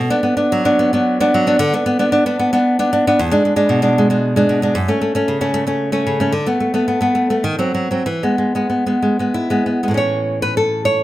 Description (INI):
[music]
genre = romantic piece for solo classical guitar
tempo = 90-118 BPM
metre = 3/4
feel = rubato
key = unclear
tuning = A4 = 441 Hz
[part]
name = nylon-string guitar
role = solo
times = 0.0-11.0 s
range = E2 to C#5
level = -14 LUFS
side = equal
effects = none
[sound]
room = light reverb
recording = close, detailed microphones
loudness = -14 LUFS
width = side -15 dB against mid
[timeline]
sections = 0.0-10.0 A section; 10.0-11.0 B section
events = none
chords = 0.0 Bm; 1.6 Bm/D; 3.2 E7 (rootless); 4.8 F#m (rootless); 6.3 B7(no3); 7.4 D#m6; 8.1 E; 10.0 A